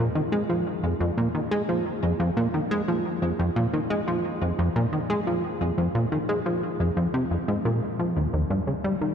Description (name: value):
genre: ambient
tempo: 88 BPM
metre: 4/4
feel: straight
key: F minor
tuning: A4 = 441 Hz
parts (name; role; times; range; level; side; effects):
- plucky analog bass; solo; 0.0-9.1 s; Eb2 to Ab3; -23 LUFS; equal; tape echo
room: wet cathedral reverb, RT60 6.3 s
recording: in a vast, echoing space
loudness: -23 LUFS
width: side -7 dB against mid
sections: 0.0-9.1 A section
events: none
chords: none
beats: 0.67 1.35 2.03 | 2.71 3.39 4.07 4.76 | 5.44 6.12 6.80 7.48 | 8.16 8.85